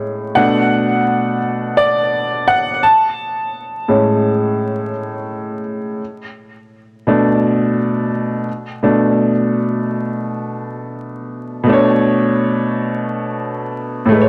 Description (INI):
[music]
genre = hip hop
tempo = 85 BPM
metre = 4/4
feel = swing 57% on 16ths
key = B dorian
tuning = A4 = 440 Hz
[part]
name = warm upright piano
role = solo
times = 0.0-14.3 s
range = A2 to A5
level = -17 LUFS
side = equal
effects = low-pass filter, tape echo
[sound]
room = moderate spring reverb, RT60 1.6 s, small room ambience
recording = vinyl crackle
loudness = -17 LUFS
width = mono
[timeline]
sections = 0.0-11.6 A section; 11.6-14.3 B section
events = upright piano solo 0.0-11.6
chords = 0.4 Bm7; 2.8 Amaj7; 6.0 Bm7; 11.6 Bm9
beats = | 0.35 1.06 1.76 2.47 | 3.17 3.88 4.59 5.29 | 6.00 6.70 7.41 8.12 | 8.82 9.53 10.23 10.94 | 11.64 12.35 13.06 13.76